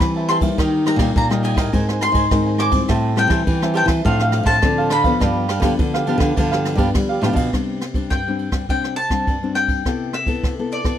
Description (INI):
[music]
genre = samba and choro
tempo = 104 BPM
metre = 4/4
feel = straight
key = C major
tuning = A4 = 440 Hz
[part]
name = bowl-back mandolin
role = melody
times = 0.0-11.0 s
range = D5 to D6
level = -22 LUFS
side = left 1 dB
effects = none
[part]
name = nylon-string guitar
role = accompaniment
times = 0.0-11.0 s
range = G2 to Bb4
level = -23 LUFS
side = left 5 dB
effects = none
[part]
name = nylon-string guitar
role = bass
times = 0.0-7.5 s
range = G2 to G3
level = -20 LUFS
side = right 1 dB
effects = none
[part]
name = jazz brush drum kit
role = drums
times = 0.0-11.0 s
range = kick drum, ride cymbal, rim click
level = -22 LUFS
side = right 1 dB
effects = none
[part]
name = cavaquinho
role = accompaniment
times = 0.2-7.5 s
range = D4 to A5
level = -24 LUFS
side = right 6 dB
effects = none
[sound]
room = studio ambience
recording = dry, close 1970s-style studio recording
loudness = -16 LUFS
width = side -10 dB against mid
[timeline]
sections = 0.0-7.5 A section; 7.5-11.0 B section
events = none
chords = 0.0 Am7; 0.6 Eb; 1.7 Abadd9; 2.9 Am7; 4.1 Dm7/A; 5.2 G7; 7.5 Csus2; 9.9 Amadd9/C